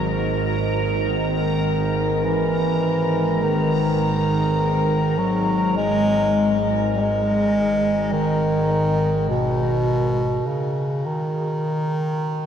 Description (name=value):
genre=dark ambient drone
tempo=51 BPM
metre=4/4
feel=straight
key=unclear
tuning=A4 = 440 Hz
part: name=warm bass clarinet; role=melody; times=0.0-12.5 s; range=B2 to G#3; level=-20 LUFS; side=equal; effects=diffuse ambient delay
part: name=deep dark ambient pad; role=sustained chords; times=0.0-10.5 s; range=G#2 to D#5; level=-33 LUFS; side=equal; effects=none
part: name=bowed-like drone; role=drone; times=0.0-12.5 s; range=G#1 to G#2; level=-25 LUFS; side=equal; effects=built-in reverb
part: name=bubbling stepped-filter texture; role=texture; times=0.0-10.5 s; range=A#4 to A#5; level=-30 LUFS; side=right 3 dB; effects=chorus, built-in reverb
room=wet huge ambient reverb, RT60 7.6 s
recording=dreamy mix soaked in reverb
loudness=-18 LUFS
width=side -8 dB against mid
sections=0.0-10.5 A section; 10.5-12.5 B section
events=none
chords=0.0 D#m/G#; 10.5 N.C.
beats=| 1.05 2.23 3.41 4.58 | 5.76 6.93 8.11 9.29 | 10.46 11.64